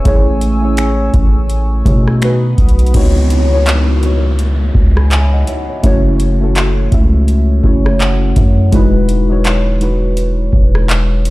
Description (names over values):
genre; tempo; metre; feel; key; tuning
contemporary R&B; 83 BPM; 4/4; swing 58% on 16ths; C# minor; A4 = 441 Hz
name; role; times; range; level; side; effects
muted felt-like synth keys; accompaniment; 0.0-11.3 s; G#3 to B5; -17 LUFS; left 1 dB; chorus, phaser
chorused pulse-width pad; sustained chords; 0.0-2.9 s; A3 to E6; -23 LUFS; right 3 dB; none
long sustained 808-style bass; bass; 0.1-11.3 s; E1 to B2; -13 LUFS; equal; none
booming analog drum machine; drums; 0.1-11.3 s; crash cymbal, finger snaps, handclaps, hi-hat, kick drum, rim click; -13 LUFS; equal; none
downlifter; sound effects; 2.9-8.7 s; none; -26 LUFS; equal; none
room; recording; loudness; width
digital ambience; played on a big sound system in a bare room, large studio reverb; -10 LUFS; side -19 dB against mid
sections
0.0-2.9 A section; 2.9-11.3 B section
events
synth keys fill 7.6-8.7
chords
0.1 Amaj7; 2.2 B7; 2.9 C#m11; 5.8 F#m7; 8.7 Emaj9